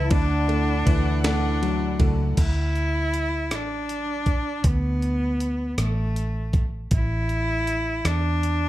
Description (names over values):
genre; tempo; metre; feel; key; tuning
six-eight pop ballad; 53 BPM (dotted quarters); 6/8; straight; unclear; A4 = 440 Hz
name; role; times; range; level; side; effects
rich cello; melody; 0.0-8.7 s; A3 to E4; -27 LUFS; equal; none
warm baby grand piano; accompaniment; 0.0-2.4 s; E3 to D4; -27 LUFS; left 2 dB; none
warm studio string section; sustained chords; 0.0-2.4 s; E4 to F#5; -33 LUFS; right 1 dB; none
vintage muted fingered electric bass; bass; 0.0-8.7 s; A1 to E2; -25 LUFS; equal; none
breakbeat sampler-style drum kit; drums; 0.1-8.6 s; crash cymbal, hi-hat, kick drum, ride cymbal, rim click, snare drum; -24 LUFS; equal; none
room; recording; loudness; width
small room reverb; dark, warm production; -21 LUFS; side -15 dB against mid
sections
0.0-2.4 A section; 2.4-8.7 B section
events
none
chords
0.1 Dadd9; 2.4 Dsus2; 6.9 Asus4